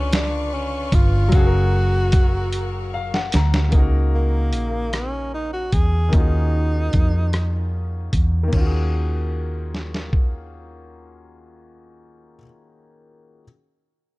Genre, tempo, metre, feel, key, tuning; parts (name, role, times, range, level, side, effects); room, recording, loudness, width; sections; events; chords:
slow six-eight R&B; 50 BPM (dotted quarters); 6/8; straight; Eb minor; A4 = 440 Hz
warm tenor saxophone; melody; 0.0-7.7 s; Bb3 to Ab4; -26 LUFS; equal; tape echo
clear baby grand piano; accompaniment; 0.0-13.4 s; Db3 to Bb5; -30 LUFS; left 3 dB
bright studio string section; sustained chords; 0.0-3.7 s; Gb4 to Db6; -35 LUFS; left 4 dB
vintage muted fingered electric bass; bass; 0.0-12.4 s; Gb1 to F2; -20 LUFS; equal
dusty soul sampler-style drum kit; drums; 0.1-10.3 s; crash cymbal, hi-hat, kick drum, rim click, snare drum; -19 LUFS; equal
small room ambience; dark, warm production; -18 LUFS; side -21 dB against mid
0.0-3.7 A section; 3.7-8.5 B section; 8.5-10.9 C section
drum fill 2.5-3.7; grand piano fill 2.5-3.7
0.0 Db7b9; 1.3 Gbmaj7; 3.7 Dbsus24; 6.1 Ebm11